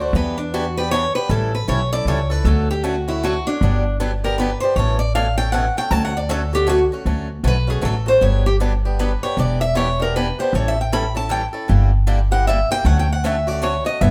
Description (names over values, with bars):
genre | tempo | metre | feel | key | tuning
acoustic string swing (jazz manouche) | 156 BPM | 3/4 | swing 61% on 8ths | D major | A4 = 442 Hz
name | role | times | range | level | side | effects
picked steel-string acoustic guitar | melody | 0.0-14.1 s | D4 to B5 | -23 LUFS | equal | none
picked swing-style acoustic guitar | accompaniment | 0.0-14.1 s | B2 to A4 | -28 LUFS | equal | none
upright bass | bass | 0.0-14.1 s | E1 to E2 | -22 LUFS | equal | none
room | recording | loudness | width
light reverb | band playing live in one room | -19 LUFS | mono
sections
0.0-7.1 A section; 7.1-14.1 A section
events
steel-string acoustic guitar solo 0.0-14.1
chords
0.1 Em7; 1.3 A7; 2.5 Dmaj7; 3.6 Gmaj7; 4.8 Aadd9; 5.9 Dmaj7; 8.2 Gmaj7; 9.4 Em7; 10.5 A7; 11.7 Gm6; 12.8 Dmaj7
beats
| 0.14 0.53 0.91 | 1.30 1.68 2.07 | 2.45 2.84 3.22 | 3.61 3.99 4.38 | 4.76 5.14 5.53 | 5.91 6.30 6.68 | 7.07 7.45 7.84 | 8.22 8.61 8.99 | 9.38 9.76 10.15 | 10.54 10.92 11.31 | 11.69 12.08 12.46 | 12.85 13.23 13.62 | 14.00